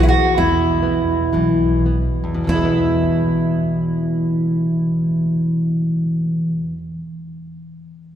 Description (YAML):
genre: fado-style ballad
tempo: 48-71 BPM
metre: 2/4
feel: rubato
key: E major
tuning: A4 = 440 Hz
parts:
  - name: fingerpicked twelve-string acoustic guitar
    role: melody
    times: 0.0-6.8 s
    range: E4 to F#4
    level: -21 LUFS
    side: right 3 dB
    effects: none
  - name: nylon-string guitar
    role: accompaniment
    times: 0.0-6.9 s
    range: E2 to B3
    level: -19 LUFS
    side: left 1 dB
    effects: none
  - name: upright bass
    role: bass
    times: 0.0-6.8 s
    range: B1 to E2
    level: -22 LUFS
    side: right 1 dB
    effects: none
room: wet church reverb, RT60 3.6 s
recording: recorded in a church or concert hall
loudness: -16 LUFS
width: side -10 dB against mid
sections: 0.0-2.5 A section; 2.5-7.3 B section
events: slowing down 0.0-2.5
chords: 0.0 E5; 2.5 E